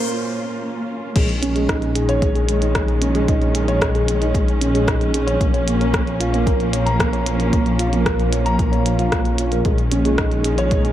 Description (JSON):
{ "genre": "piano and strings electronica", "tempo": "113 BPM", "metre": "4/4", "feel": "straight", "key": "unclear", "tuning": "A4 = 440 Hz", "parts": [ { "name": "warm studio string section", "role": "sustained chords", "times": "0.0-10.9 s", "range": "Bb2 to F4", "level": "-27 LUFS", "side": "equal", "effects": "sidechain pumping" }, { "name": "dark upright piano", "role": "riff", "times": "0.0-10.9 s", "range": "Ab3 to Bb5", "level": "-21 LUFS", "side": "right 1 dB", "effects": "digital delay" }, { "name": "dark detuned saw bass", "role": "bass", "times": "1.2-10.9 s", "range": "Bb1", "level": "-21 LUFS", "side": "left 1 dB", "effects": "sidechain pumping" }, { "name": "electronic kick drum", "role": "drums", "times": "1.2-10.8 s", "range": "none", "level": "-21 LUFS", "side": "left 1 dB", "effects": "overdrive" }, { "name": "minimal click drum kit", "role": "drums", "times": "1.2-10.9 s", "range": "crash cymbal, hi-hat, rim click", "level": "-26 LUFS", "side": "equal", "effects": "none" } ], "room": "light reverb, digital ambience", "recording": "none", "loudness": "-16 LUFS", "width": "side -12 dB against mid", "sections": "0.0-1.2 A section; 1.2-10.9 B section", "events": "build-up 0.0-1.2; filter sweep on string section 0.0-1.2; break 0.1-1.2; drop 1.2-10.9", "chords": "0.0 Bbm; 1.2 Eb7sus4/Bb; 5.4 Bbm; 9.7 Eb7sus4/Bb" }